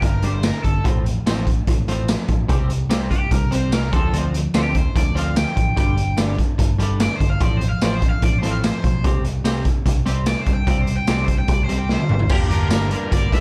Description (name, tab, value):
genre	indie rock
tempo	147 BPM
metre	4/4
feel	straight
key	G minor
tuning	A4 = 440 Hz
part	crunchy overdriven guitar	melody	0.0-13.4 s	G4 to G5	-29 LUFS	equal	slapback echo
part	twelve-string electric guitar	riff	0.0-13.4 s	G2 to Bb4	-27 LUFS	equal	double-tracked
part	picked electric bass	bass	0.0-13.4 s	G1 to D2	-25 LUFS	equal	none
part	raw garage drum kit	drums	0.0-13.4 s	crash cymbal, hi-hat, kick drum, snare drum, tambourine, toms	-22 LUFS	equal	none
room	little or no reverb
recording	dark, warm production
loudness	-19 LUFS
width	mono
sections	0.0-12.3 A section; 12.3-13.4 B section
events	overdriven electric guitar solo 0.0-12.3; drum fill 11.9-12.3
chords	0.0 G5; 0.8 F/A; 2.5 C5; 3.9 Dm7; 5.8 G5; 7.4 F/A; 9.0 C5; 12.3 Gm